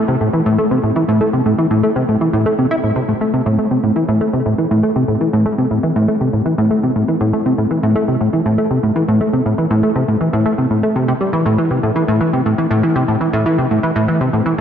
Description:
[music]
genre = ambient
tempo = 120 BPM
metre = 4/4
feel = straight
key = A minor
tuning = A4 = 437 Hz
[part]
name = plucky analog bass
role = solo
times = 0.0-14.6 s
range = A2 to E4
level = -13 LUFS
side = equal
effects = analog chorus, analog delay
[sound]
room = wet lush hall reverb, RT60 2.9 s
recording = dark, warm production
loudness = -13 LUFS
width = side -8 dB against mid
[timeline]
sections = 0.0-3.5 A section; 3.5-14.6 B section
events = none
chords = none

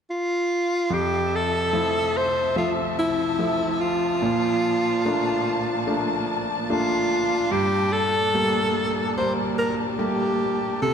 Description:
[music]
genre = pop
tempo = 73 BPM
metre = 4/4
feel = straight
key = F major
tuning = A4 = 439 Hz
[part]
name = breathy alto saxophone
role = melody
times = 0.1-10.9 s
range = E4 to C5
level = -23 LUFS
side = equal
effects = none
[part]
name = clear concert grand piano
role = accompaniment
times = 0.9-10.9 s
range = F2 to E5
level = -26 LUFS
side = right 1 dB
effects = none
[part]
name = warm studio string section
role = sustained chords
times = 0.9-10.9 s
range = Bb2 to A5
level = -29 LUFS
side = left 1 dB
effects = none
[sound]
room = moderate scoring stage reverb, RT60 1.9 s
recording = none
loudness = -21 LUFS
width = side -7 dB against mid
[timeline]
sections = 0.9-10.9 A section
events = none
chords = 0.0 N.C.; 0.9 Fmaj7; 4.2 Bbmaj7; 7.5 Gmadd9

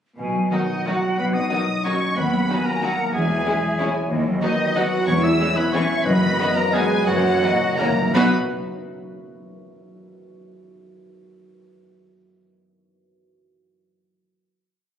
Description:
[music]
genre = classical, orchestral ballroom waltz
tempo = 160-202 BPM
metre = 3/4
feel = rubato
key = B major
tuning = A4 = 440 Hz
[part]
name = large flute ensemble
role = second line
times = 0.2-8.3 s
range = B4 to F#6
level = -27 LUFS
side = equal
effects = none
[part]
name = concert harp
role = arpeggios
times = 0.2-9.2 s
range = F#2 to C#6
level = -27 LUFS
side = left 3 dB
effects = none
[part]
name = clear symphonic cello section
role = bass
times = 0.2-8.3 s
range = D#2 to B2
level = -26 LUFS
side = right 2 dB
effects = none
[part]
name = rich symphonic double bass section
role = bass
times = 0.2-8.3 s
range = E1 to D#2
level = -29 LUFS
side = right 2 dB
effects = none
[part]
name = warm symphonic violin section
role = melody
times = 0.5-8.3 s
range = D#5 to E6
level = -27 LUFS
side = left 1 dB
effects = none
[part]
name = clear oboe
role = second line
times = 0.5-8.3 s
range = D#4 to E5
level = -27 LUFS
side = right 1 dB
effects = none
[part]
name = rich symphonic violin section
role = second line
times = 0.5-8.3 s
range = C#4 to G#4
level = -31 LUFS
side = left 1 dB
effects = none
[part]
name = clear symphonic viola section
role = accompaniment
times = 0.5-8.3 s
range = D#3 to B3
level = -30 LUFS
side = right 2 dB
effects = none
[part]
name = dark French horn section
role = sustained chords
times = 0.5-8.3 s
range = D#3 to E4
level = -26 LUFS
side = left 2 dB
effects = none
[part]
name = timpani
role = percussion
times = 6.1-8.3 s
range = F#2 to B2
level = -33 LUFS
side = equal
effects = none
[sound]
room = wet recital hall reverb, RT60 1.6 s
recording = recorded on a phone in the room, club reverb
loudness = -18 LUFS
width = side -8 dB against mid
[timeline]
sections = 0.2-8.2 A section; 8.2-9.2 final chord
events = slowing down 5.6-8.2; timpani fill 7.1-8.2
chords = 0.2 B; 2.2 B/D#; 3.1 C#m/E; 4.1 B/D#; 5.1 C#m/E; 6.1 B/F#; 7.1 F#7; 8.2 B

